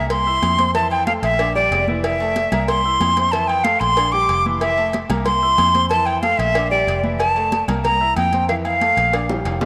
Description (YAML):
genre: latin, salsa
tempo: 186 BPM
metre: 4/4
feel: straight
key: F major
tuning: A4 = 440 Hz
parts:
  - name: bright silver concert flute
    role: melody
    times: 0.0-9.3 s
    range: D5 to D6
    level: -20 LUFS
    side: equal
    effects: slapback echo
  - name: clear grand piano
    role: accompaniment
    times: 0.0-9.7 s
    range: E3 to E6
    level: -30 LUFS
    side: equal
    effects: none
  - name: fingered electric bass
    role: bass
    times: 0.0-9.7 s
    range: F1 to F2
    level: -27 LUFS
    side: equal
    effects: none
  - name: agogo bells and timbales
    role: percussion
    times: 0.1-9.7 s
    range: none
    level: -34 LUFS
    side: equal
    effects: none
  - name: congas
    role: percussion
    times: 0.1-9.7 s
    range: none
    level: -30 LUFS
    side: equal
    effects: none
  - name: cowbell and bongos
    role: percussion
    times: 0.1-9.7 s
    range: none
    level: -31 LUFS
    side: equal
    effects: none
room: moderate plate reverb, RT60 3.5 s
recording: none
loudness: -18 LUFS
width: mono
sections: 0.0-9.7 A section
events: drum fill 9.3-9.7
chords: 0.1 C7; 0.7 Fmaj7; 1.4 Bb6; 2.0 Fmaj7; 2.7 C7; 3.3 Fmaj7; 4.0 Bb6; 4.6 Fmaj7; 5.3 C7; 5.9 Fmaj7; 6.5 Bb6; 7.2 Fmaj7; 7.8 C7; 8.5 Fmaj7; 9.1 Bb6